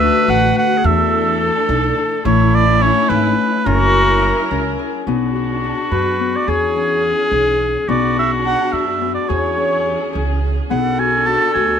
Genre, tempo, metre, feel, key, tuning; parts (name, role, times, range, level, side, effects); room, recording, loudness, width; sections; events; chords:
contemporary instrumental, chamber music in an uneven meter; 213 BPM (eighths); 5/8; straight; B dorian; A4 = 445 Hz
warm oboe; melody; 0.0-11.8 s; A#4 to A5; -18 LUFS; right 4 dB
clear clarinet; second line; 0.0-11.8 s; E4 to C#5; -19 LUFS; left 1 dB
rich studio string section; sustained chords; 0.0-11.8 s; D3 to A#4; -26 LUFS; right 3 dB
Celtic harp; arpeggios; 0.0-11.8 s; A3 to A#4; -20 LUFS; left 12 dB
upright bass; bass; 0.0-11.8 s; F#1 to F#2; -20 LUFS; right 3 dB
light reverb; close, detailed microphones; -14 LUFS; side -8 dB against mid
0.0-5.1 A section; 5.1-11.8 B section
0.0 D; 0.8 E7sus4; 2.3 A; 3.7 F#7; 5.1 Bm; 9.3 E6; 10.7 Bm